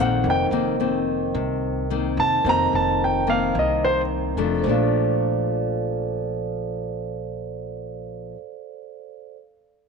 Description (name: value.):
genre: bossa nova.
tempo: 109 BPM.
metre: 4/4.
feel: straight.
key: Bb major.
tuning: A4 = 439 Hz.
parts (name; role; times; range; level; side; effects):
clear concert grand piano; melody; 0.0-4.0 s; C5 to Bb5; -22 LUFS; right 1 dB; none.
nylon-string guitar; accompaniment; 0.0-8.4 s; F2 to D4; -25 LUFS; left 11 dB; none.
vibraphone with medium mallets; accompaniment; 0.0-9.4 s; A4 to Bb5; -27 LUFS; right 14 dB; none.
upright bass; bass; 0.0-8.3 s; F1 to C2; -28 LUFS; right 1 dB; none.
room: moderate spring reverb, RT60 2.2 s.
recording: 1960s-style stereo with parts hard left and right.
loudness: -20 LUFS.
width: side -5 dB against mid.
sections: 0.0-4.6 A section; 4.6-6.9 B section.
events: grand piano solo 0.0-4.6.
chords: 0.2 F7sus4; 4.6 Bbmaj7.